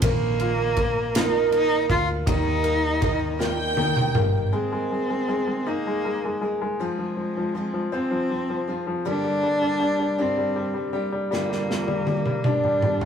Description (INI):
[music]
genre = six-eight pop ballad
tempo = 53 BPM (dotted quarters)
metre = 6/8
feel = straight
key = unclear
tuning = A4 = 440 Hz
[part]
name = bright grand piano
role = accompaniment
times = 0.0-13.1 s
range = Eb3 to F4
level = -27 LUFS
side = left 4 dB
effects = none
[part]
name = picked steel-string acoustic guitar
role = arpeggios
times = 0.0-13.1 s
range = G2 to Bb4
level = -28 LUFS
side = right 5 dB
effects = tape echo
[part]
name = hollow-body short-scale fingered electric bass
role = bass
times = 0.0-4.5 s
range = G1 to Eb2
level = -28 LUFS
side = equal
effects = none
[part]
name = modern studio drum kit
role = drums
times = 0.0-4.3, 11.3-13.1 s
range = kick drum, ride cymbal, snare drum, toms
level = -26 LUFS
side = right 1 dB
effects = none
[part]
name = rich cello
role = melody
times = 0.1-13.1 s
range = Ab3 to F4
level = -27 LUFS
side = equal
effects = none
[part]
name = warm studio violin section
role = second line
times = 3.0-4.5 s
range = Eb5 to G5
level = -28 LUFS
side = right 2 dB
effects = none
[sound]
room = moderate studio reverb, RT60 0.5 s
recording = rough rehearsal-room recording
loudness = -21 LUFS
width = side -8 dB against mid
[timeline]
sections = 0.0-4.5 A section; 4.5-13.1 B section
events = drum fill 3.4-4.5, 11.3-13.1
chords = 0.0 Bbsus4; 2.3 Eb; 4.5 Absus2; 6.8 Fm; 9.1 Gm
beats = | 0.03 1.15 | 2.27 3.40 | 4.54 5.67 | 6.81 7.93 | 9.06 10.19 | 11.32 12.46